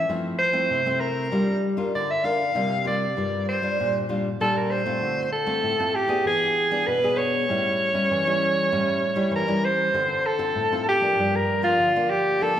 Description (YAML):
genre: samba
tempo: 97 BPM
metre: 4/4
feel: straight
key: D minor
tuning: A4 = 439 Hz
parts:
  - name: mellow soprano saxophone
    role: melody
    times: 0.0-12.6 s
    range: F4 to F5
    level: -22 LUFS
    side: equal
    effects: none
  - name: nylon-string guitar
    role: accompaniment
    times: 0.0-12.6 s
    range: G2 to Bb4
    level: -26 LUFS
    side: left 1 dB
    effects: none
room: wet scoring stage reverb, RT60 1.8 s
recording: recorded in a church or concert hall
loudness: -21 LUFS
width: side -10 dB against mid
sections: 0.0-10.0 A section; 10.0-12.6 B section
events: none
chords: 0.1 Fmaj7; 1.3 Gm7; 2.6 C7sus4; 3.8 Gm7/Bb; 5.0 Dm7; 6.3 E7; 7.5 A7; 10.0 Dm7; 11.2 Gm7